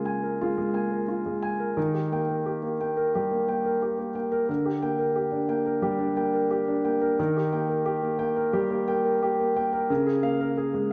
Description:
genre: neoclassical minimalist piano.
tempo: 88 BPM.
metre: 4/4.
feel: rubato.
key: Eb major.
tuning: A4 = 440 Hz.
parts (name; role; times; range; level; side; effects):
warm concert grand piano; solo; 0.0-10.9 s; Db3 to Ab5; -26 LUFS; equal; none.
room: moderate scoring stage reverb, RT60 2.0 s.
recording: recorded in a church or concert hall, nothing above 11.0 kHz.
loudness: -26 LUFS.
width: mono.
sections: 0.0-10.9 A section.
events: none.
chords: 0.0 Db6; 1.8 Eb; 4.5 Gm/D; 7.2 Eb; 9.9 Db6.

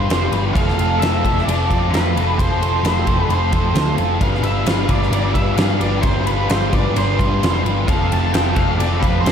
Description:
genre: rock, shoegaze and dream pop.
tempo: 131 BPM.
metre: 4/4.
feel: straight.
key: unclear.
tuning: A4 = 440 Hz.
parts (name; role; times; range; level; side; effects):
octave-fuzz lead guitar; melody; 0.0-9.3 s; B4 to A5; -25 LUFS; right 1 dB; distortion, ping-pong delay.
biting overdriven guitar; riff; 0.0-9.3 s; F3 to B4; -20 LUFS; left 1 dB; lush chorus.
hollow-body short-scale picked electric bass; bass; 0.0-9.3 s; F1 to G2; -20 LUFS; equal; none.
huge arena drum kit; drums; 0.1-9.3 s; kick drum, ride cymbal, snare drum; -20 LUFS; equal; none.
room: moderate lush hall reverb, RT60 1.8 s.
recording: dreamy mix soaked in reverb.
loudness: -15 LUFS.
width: side -8 dB against mid.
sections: 0.0-9.3 A section.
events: none.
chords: 0.0 G7sus4; 0.6 F; 4.2 G7sus4; 7.9 F.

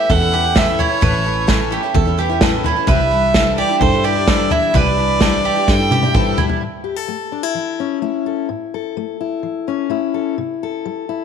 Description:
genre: indie folk with a building arrangement.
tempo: 128 BPM.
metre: 4/4.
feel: straight.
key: unclear.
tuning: A4 = 441 Hz.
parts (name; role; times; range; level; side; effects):
clear fiddle; melody; 0.0-6.4 s; C5 to G5; -18 LUFS; right 1 dB; none.
picked twelve-string acoustic guitar; accompaniment; 0.0-6.6 s; A2 to E4; -22 LUFS; left 12 dB; none.
mandolin; arpeggios; 0.0-6.6 s; E4 to B4; -21 LUFS; right 11 dB; slapback echo.
fingered electric bass; bass; 0.1-6.4 s; A1 to G2; -21 LUFS; right 1 dB; none.
unplugged drum kit; drums; 0.1-6.6 s; kick drum, snare drum, toms; -17 LUFS; equal; none.
fingerpicked steel-string acoustic guitar; accompaniment; 6.6-11.2 s; A2 to A4; -20 LUFS; left 10 dB; none.
room: light reverb, small room ambience.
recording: 1960s-style stereo with parts hard left and right.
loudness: -15 LUFS.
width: side -7 dB against mid.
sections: 0.0-6.6 A section; 6.6-11.2 B section.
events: drum fill 5.7-6.6.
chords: 0.0 A; 2.9 Cadd9; 6.6 A; 10.4 C.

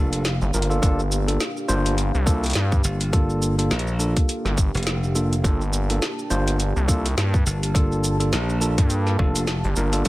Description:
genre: glitch hop.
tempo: 104 BPM.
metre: 4/4.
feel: swing 58% on 16ths.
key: G minor.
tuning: A4 = 440 Hz.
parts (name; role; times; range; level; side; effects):
dark analog pad; sustained chords; 0.0-10.1 s; Bb3 to A5; -31 LUFS; equal; chorus, sidechain pumping.
bright tine electric piano; stabs; 0.0-10.1 s; Bb3 to C5; -27 LUFS; equal; sidechain pumping, digital delay.
glassy slap bass; bass; 0.0-9.6 s; F1 to Bb1; -23 LUFS; equal; none.
drum and bass drum kit; drums; 0.1-10.1 s; hi-hat, shaker, snare drum; -28 LUFS; equal; none.
gritty driven synth bass; bass; 0.4-10.1 s; G1 to G2; -22 LUFS; equal; none.
electronic kick drum; drums; 0.8-10.1 s; none; -20 LUFS; equal; none.
room: little or no reverb.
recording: none.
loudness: -19 LUFS.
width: side -18 dB against mid.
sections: 0.0-10.1 A section.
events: none.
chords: 0.0 Gm7.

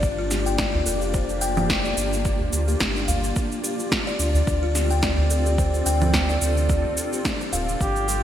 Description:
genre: organic downtempo.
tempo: 108 BPM.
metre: 4/4.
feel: swing 56% on 16ths.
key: unclear.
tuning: A4 = 440 Hz.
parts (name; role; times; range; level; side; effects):
granular cloud pad; sustained chords; 0.0-8.2 s; Bb3 to D5; -29 LUFS; equal; built-in reverb, vintage 12-bit sampler grit, sidechain pumping, shimmer reverb.
buzzing kalimba; arpeggios; 0.0-8.2 s; D4 to G5; -27 LUFS; left 3 dB; vintage 12-bit sampler grit, digital delay, shimmer reverb.
warm sub bass; bass; 0.0-8.2 s; D1 to D2; -24 LUFS; equal; tube saturation, sidechain pumping.
electronic cabasa, snare drum and congas; drums; 0.0-8.2 s; none; -26 LUFS; right 1 dB; overdrive, gated reverb.
electronic kick drum; drums; 0.0-7.9 s; none; -27 LUFS; equal; overdrive.
udu; percussion; 0.7-7.7 s; none; -27 LUFS; right 1 dB; none.
warm duduk; melody; 7.8-8.2 s; G4; -25 LUFS; equal; none.
room: moderate lush hall reverb, RT60 2.9 s.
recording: bright 1980s-style digital production.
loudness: -20 LUFS.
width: side -10 dB against mid.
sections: 0.0-8.2 A section.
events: none.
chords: 0.0 Gm7; 3.4 Dm7.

